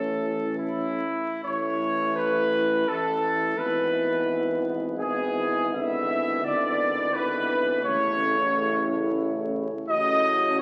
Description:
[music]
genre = classical, hymn-like piece for brass band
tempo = 66-89 BPM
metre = 3/4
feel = rubato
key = A major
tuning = A4 = 440 Hz
[part]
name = brilliant trumpet section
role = melody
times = 0.0-10.6 s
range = E4 to E5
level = -27 LUFS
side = equal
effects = none
[part]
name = mellow French horn section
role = second line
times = 0.0-10.6 s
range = C#4 to F#4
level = -36 LUFS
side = equal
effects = none
[part]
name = mellow trombone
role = accompaniment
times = 0.0-10.6 s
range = C#3 to E3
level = -36 LUFS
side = equal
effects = none
[part]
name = warm trombone section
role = accompaniment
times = 0.0-10.6 s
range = A3 to B3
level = -36 LUFS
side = equal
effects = none
[part]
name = warm tuba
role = bass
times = 0.0-10.6 s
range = G#1 to A1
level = -35 LUFS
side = equal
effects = none
[sound]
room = wet concert hall reverb, RT60 2.3 s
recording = very old 78 rpm record, vinyl crackle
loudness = -25 LUFS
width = mono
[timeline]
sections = 0.0-1.4 A section; 1.4-10.6 B section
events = none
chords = 0.0 A; 3.6 E/G#; 5.7 E7/G#; 7.8 A

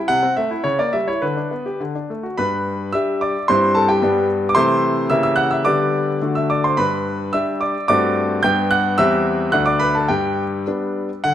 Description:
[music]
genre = classical-period piano sonatina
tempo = 102-112 BPM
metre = 2/4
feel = rubato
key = G major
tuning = A4 = 441 Hz
[part]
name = bright grand piano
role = solo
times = 0.0-11.3 s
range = D2 to G6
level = -16 LUFS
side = equal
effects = none
[sound]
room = moderate recital hall reverb, RT60 1.8 s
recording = none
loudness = -16 LUFS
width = side -10 dB against mid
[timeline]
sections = 0.0-2.4 A section; 2.4-11.2 B section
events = none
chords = 0.1 Am/C; 0.7 C#dim7; 1.2 G/D; 1.8 D; 2.4 G; 3.5 C/G; 4.0 G; 4.6 Am/C; 5.1 C#dim7; 5.7 G/D; 6.2 D; 6.8 G; 7.9 D7/G; 8.4 G; 9.0 C/E; 9.5 D; 10.1 G

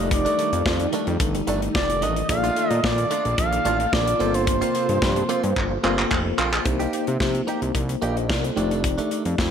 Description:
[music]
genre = early-eighties boogie funk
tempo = 110 BPM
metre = 4/4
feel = straight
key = C dorian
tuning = A4 = 440 Hz
[part]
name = mellow tine electric piano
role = accompaniment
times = 0.0-9.5 s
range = A3 to F5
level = -28 LUFS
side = left 2 dB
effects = medium stereo tremolo
[part]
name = phased string machine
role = sustained chords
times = 0.0-6.6 s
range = C3 to A4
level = -30 LUFS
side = equal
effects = ensemble chorus, phaser
[part]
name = direct-recorded clean electric guitar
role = riff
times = 0.0-9.3 s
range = Eb3 to G4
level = -30 LUFS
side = right 5 dB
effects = lush chorus
[part]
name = fat analog bass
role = bass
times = 0.0-9.5 s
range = F1 to C3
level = -26 LUFS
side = equal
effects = none
[part]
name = expressive portamento lead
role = melody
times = 0.1-6.1 s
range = C5 to F5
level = -25 LUFS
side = right 1 dB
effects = chorus, ping-pong delay
[part]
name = modern studio drum kit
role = drums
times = 0.1-9.5 s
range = handclaps, hi-hat, kick drum, snare drum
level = -25 LUFS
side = equal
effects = none
[sound]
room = moderate plate reverb, RT60 1.7 s, small room ambience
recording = dreamy mix soaked in reverb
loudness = -20 LUFS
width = side -8 dB against mid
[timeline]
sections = 0.0-6.7 A section; 6.7-9.5 B section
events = drum fill 5.6-6.7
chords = 0.0 F13; 2.3 Bbmaj7; 4.2 Gm11; 6.7 Cm7; 8.6 F13

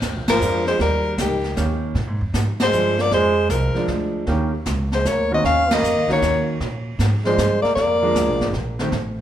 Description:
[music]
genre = jazz, small-group swing and bop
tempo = 155 BPM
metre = 3/4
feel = swing 67% on 8ths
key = Bb mixolydian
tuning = A4 = 440 Hz
[part]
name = upright bass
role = bass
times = 0.0-9.2 s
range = Ab1 to Bb2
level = -24 LUFS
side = right 1 dB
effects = none
[part]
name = jazz brush drum kit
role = drums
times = 0.0-9.2 s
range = brushed snare drum, hi-hat, kick drum, ride cymbal, snare drum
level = -26 LUFS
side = right 1 dB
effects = none
[part]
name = clear soprano saxophone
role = melody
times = 0.3-8.5 s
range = G4 to F5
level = -20 LUFS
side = left 3 dB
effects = none
[part]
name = breathy trombone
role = second line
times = 0.3-8.5 s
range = Eb3 to Db4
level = -23 LUFS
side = right 4 dB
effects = none
[part]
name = hollow-body jazz guitar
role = accompaniment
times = 0.4-8.9 s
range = Eb3 to G4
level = -25 LUFS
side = right 1 dB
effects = none
[sound]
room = moderate recital hall reverb, RT60 1.3 s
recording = recorded in a church or concert hall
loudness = -17 LUFS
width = side -11 dB against mid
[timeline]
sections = 0.0-9.2 A section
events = band accent 0.2, 2.5, 5.6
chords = 0.0 Bb7; 0.8 Eb7; 2.0 Bb7; 4.3 Eb7; 5.4 Ebm7; 6.6 Bb7

